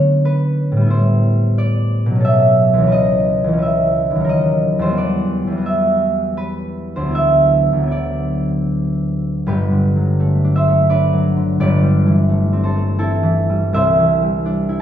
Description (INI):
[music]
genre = classical, solo harp piece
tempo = 74-92 BPM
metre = 3/4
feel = rubato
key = G major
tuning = A4 = 438 Hz
[part]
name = concert harp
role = solo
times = 0.0-14.8 s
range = G1 to E5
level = -14 LUFS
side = equal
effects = none
[sound]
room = wet recital hall reverb, RT60 1.4 s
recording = heard from further back in the room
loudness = -14 LUFS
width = side -10 dB against mid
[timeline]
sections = 0.0-9.5 A section; 9.5-14.8 B section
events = none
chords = 0.0 Bm9/D; 0.9 Am9; 2.2 Bm9; 2.9 C#m9; 4.3 Ebm7; 5.0 Emadd9; 7.1 D69; 9.5 Gmaj9; 11.6 Am9/G; 13.7 Cadd9